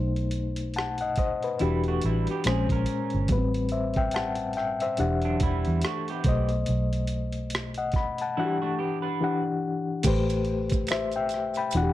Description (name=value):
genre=R&B, neo-soul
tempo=71 BPM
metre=4/4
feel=swing 59% on 16ths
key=unclear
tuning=A4 = 440 Hz
part: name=overdriven reed electric piano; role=accompaniment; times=0.0-11.9 s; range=A2 to B5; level=-27 LUFS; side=left 3 dB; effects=fast tremolo
part: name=vintage muted fingered electric bass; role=bass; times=0.0-11.9 s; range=E1 to E2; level=-28 LUFS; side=right 1 dB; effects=none
part: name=boom bap sampler-style drum kit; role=drums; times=0.2-11.9 s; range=crash cymbal, hi-hat, kick drum, rim click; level=-30 LUFS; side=right 1 dB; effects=none
part: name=electric guitar through a small old amp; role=second line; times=1.6-9.4 s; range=F#3 to B4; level=-33 LUFS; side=right 9 dB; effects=wide subtle chorus
part: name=maracas and finger snaps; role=percussion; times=10.0-11.9 s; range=none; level=-38 LUFS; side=right 19 dB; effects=none
room=little or no reverb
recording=dry, close 1970s-style studio recording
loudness=-24 LUFS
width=side -14 dB against mid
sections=0.0-10.0 A section; 10.0-11.9 A section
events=none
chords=0.0 B7b9; 1.6 Em9; 2.4 A#m9; 3.3 Am9; 5.0 Em9; 6.2 B7b9; 8.4 Em9; 10.0 Am9